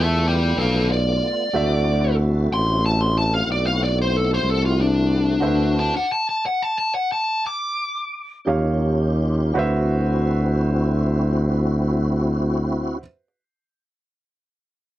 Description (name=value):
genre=blues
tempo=53-62 BPM (dotted quarters)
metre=12/8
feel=straight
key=D mixolydian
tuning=A4 = 440 Hz
part: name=smooth overdriven lead guitar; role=melody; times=0.0-8.5 s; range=D4 to D6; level=-21 LUFS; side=left 1 dB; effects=none
part: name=clear upright piano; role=accompaniment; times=0.0-13.0 s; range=F4 to E6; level=-28 LUFS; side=right 4 dB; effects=none
part: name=tonewheel organ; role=sustained chords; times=0.0-13.0 s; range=A3 to G4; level=-27 LUFS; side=left 1 dB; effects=slow rotary speaker, overdrive, chorus vibrato
part: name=breathy tuba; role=bass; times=0.0-13.0 s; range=A1 to E2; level=-20 LUFS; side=equal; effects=none
room=little or no reverb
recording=dry, close 1970s-style studio recording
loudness=-18 LUFS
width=side -14 dB against mid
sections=0.0-9.6 A section; 9.6-14.1 B section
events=lead electric guitar solo 0.0-9.6; slowing down 4.1-9.6; stop 5.4-8.5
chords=0.0 G13 (rootless); 1.5 D13; 8.5 Eb9; 9.6 D13